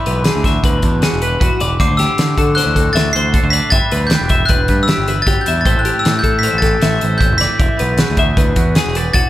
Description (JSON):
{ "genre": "math rock and midwest emo", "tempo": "155 BPM", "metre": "5/4", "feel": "straight", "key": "unclear", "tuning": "A4 = 440 Hz", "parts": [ { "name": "glockenspiel with hard plastic mallets", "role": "melody", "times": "0.0-9.3 s", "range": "B5 to C7", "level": "-18 LUFS", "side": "left 1 dB", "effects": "none" }, { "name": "twangy electric guitar", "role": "accompaniment", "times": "0.0-9.3 s", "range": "A2 to E5", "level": "-24 LUFS", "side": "right 5 dB", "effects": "none" }, { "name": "twelve-string electric guitar", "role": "arpeggios", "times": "0.0-9.3 s", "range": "F#4 to E5", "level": "-20 LUFS", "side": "left 4 dB", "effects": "spring reverb" }, { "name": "growling picked electric bass", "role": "bass", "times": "0.1-9.2 s", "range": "E1 to D3", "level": "-18 LUFS", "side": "equal", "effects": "overdrive" }, { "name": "loose indie drum kit", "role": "drums", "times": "0.1-9.2 s", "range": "hi-hat, kick drum, snare drum", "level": "-16 LUFS", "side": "equal", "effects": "none" } ], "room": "light reverb", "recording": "none", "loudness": "-12 LUFS", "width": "side -14 dB against mid", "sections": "0.0-9.3 A section", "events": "none", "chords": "0.0 E9; 1.8 D7; 3.7 G69; 5.7 Am7; 7.6 E9", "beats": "0.25 0.64 1.02 1.41 | 1.80 2.18 2.57 2.96 3.34 | 3.73 4.12 4.50 4.89 5.28 | 5.66 6.05 6.44 6.82 7.21 | 7.60 7.99 8.37 8.76 9.15" }